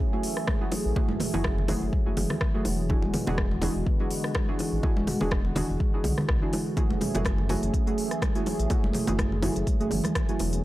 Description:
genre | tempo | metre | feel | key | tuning
afro house | 124 BPM | 4/4 | swing 55% on 16ths | F# minor | A4 = 440 Hz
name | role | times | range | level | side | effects
warm analog pad | sustained chords | 0.0-10.6 s | D3 to G#4 | -35 LUFS | equal | chorus, sidechain pumping
handpan | arpeggios | 0.0-10.4 s | D3 to C#4 | -33 LUFS | right 1 dB | sidechain pumping, tape echo
deep mellow chord stab | stabs | 0.1-10.6 s | A3 to G#4 | -33 LUFS | right 2 dB | chorus, sidechain pumping, tape echo
deep house drum kit | drums | 0.2-10.6 s | hi-hat, rim click, toms | -34 LUFS | equal | none
electronic kick drum | drums | 0.5-10.3 s | none | -27 LUFS | equal | none
congas | percussion | 0.5-10.1 s | none | -35 LUFS | left 1 dB | none
bongos | percussion | 0.7-10.5 s | none | -33 LUFS | right 1 dB | none
dark detuned saw bass | bass | 0.9-10.6 s | E1 to B1 | -30 LUFS | equal | tube saturation, sidechain pumping
room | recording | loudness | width
little or no reverb | dry, gritty hardware recording | -24 LUFS | side -16 dB against mid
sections
0.0-10.6 A section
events
none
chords
0.0 F#m9; 2.9 E9; 6.8 F#m9

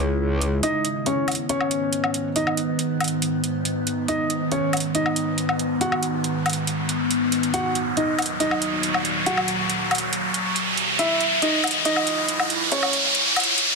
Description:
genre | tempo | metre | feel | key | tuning
heavy wobble dubstep | 139 BPM | 4/4 | half-time | G# minor | A4 = 440 Hz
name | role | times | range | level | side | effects
evolving wavetable pad | sustained chords | 0.0-13.8 s | C#2 to E4 | -26 LUFS | equal | chorus, built-in reverb, phaser
metallic wobble bass | bass | 0.0-0.6 s | C#2 | -21 LUFS | equal | chorus, overdrive
electronic hi-hat and woodblock | drums | 0.4-13.7 s | none | -25 LUFS | equal | none
dark baby grand piano | melody | 0.6-12.9 s | C#4 to F#5 | -25 LUFS | equal | dub echo
riser | sound effects | 2.7-13.8 s | none | -24 LUFS | equal | none
room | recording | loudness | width
moderate plate reverb, RT60 1.5 s, digital ambience | dense, heavily limited modern master, high-pass filter | -20 LUFS | side -3 dB against mid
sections
0.6-13.8 A section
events
build-up 0.6-13.8; filter sweep 0.6-13.8; riser 2.7-13.8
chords
0.0 C#m; 0.6 G#m; 7.5 D#m; 11.0 C#m

